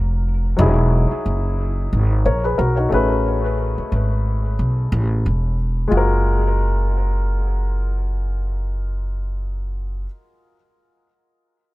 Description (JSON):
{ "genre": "hip hop, jazz-hop", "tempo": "90 BPM", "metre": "4/4", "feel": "swing 58% on 16ths", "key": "F# major", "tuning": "A4 = 440 Hz", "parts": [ { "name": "dark upright piano", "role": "accompaniment", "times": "0.0-10.1 s", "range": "F#3 to C#5", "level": "-23 LUFS", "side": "left 2 dB", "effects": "tape echo" }, { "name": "upright bass", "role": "bass", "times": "0.0-10.0 s", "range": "E1 to B1", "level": "-19 LUFS", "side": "equal", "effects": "none" } ], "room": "studio reverb", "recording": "echo-heavy mix", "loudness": "-17 LUFS", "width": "side -18 dB against mid", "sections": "0.0-5.9 A section; 5.9-8.6 B section", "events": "none", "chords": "0.0 F#maj7; 0.6 Emaj9; 2.9 Amaj9; 5.9 F#maj9" }